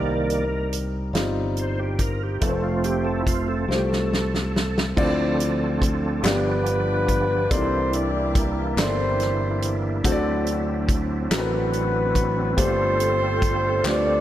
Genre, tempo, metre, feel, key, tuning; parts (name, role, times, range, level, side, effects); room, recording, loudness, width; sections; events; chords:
slow gospel; 47 BPM (dotted quarters); 6/8; straight; A4 = 440 Hz
dark concert grand piano; accompaniment; 0.0-14.2 s; G2 to D5; -28 LUFS; left 2 dB
bright tonewheel organ; sustained chords; 0.0-14.2 s; Eb3 to D5; -28 LUFS; right 3 dB; fast rotary speaker, chorus vibrato
fingered electric bass; bass; 0.0-14.2 s; F1 to D2; -26 LUFS; equal
natural country drum kit; drums; 0.3-14.1 s; crash cymbal, hi-hat, kick drum, snare drum; -25 LUFS; equal
group handclap; percussion; 6.2-14.2 s; -33 LUFS; left 4 dB
mellow horn section; melody; 6.3-14.2 s; Bb3 to D5; -24 LUFS; equal; slapback echo
light reverb; -20 LUFS; side -12 dB against mid
0.0-5.0 A section; 5.0-14.2 B section
tonewheel organ solo 0.0-5.0; drum fill 3.7-5.0, 13.8-14.2
0.0 Cm7; 2.4 F; 5.0 Dm9; 6.2 G7; 7.5 C13; 10.0 D7; 12.6 G9sus4